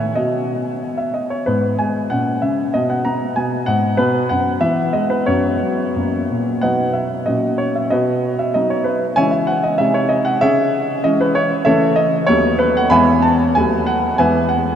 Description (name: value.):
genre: classical-period piano sonatina.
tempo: 95 BPM.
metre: 2/4.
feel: rubato.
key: B major, E major from 11.7 s.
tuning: A4 = 445 Hz.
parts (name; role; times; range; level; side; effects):
warm baby grand piano; solo; 0.0-14.8 s; D#2 to B5; -15 LUFS; equal; none.
room: wet huge ambient reverb, RT60 7.8 s.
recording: in a vast, echoing space.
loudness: -15 LUFS.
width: side -9 dB against mid.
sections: 0.0-6.6 A section; 6.6-14.8 B section.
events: none.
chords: 0.2 B; 1.5 G#m; 2.1 F#7/A#; 2.8 N.C.; 3.4 G#m7; 4.0 B5; 4.6 E; 5.3 F#sus4; 6.0 F#; 6.6 B; 7.3 F#/A#; 7.9 B; 9.2 C#m; 9.8 G#/B#; 10.4 C#m; 11.7 A/C#; 12.3 B7/D#; 12.9 E; 13.6 B7/D#; 14.2 E.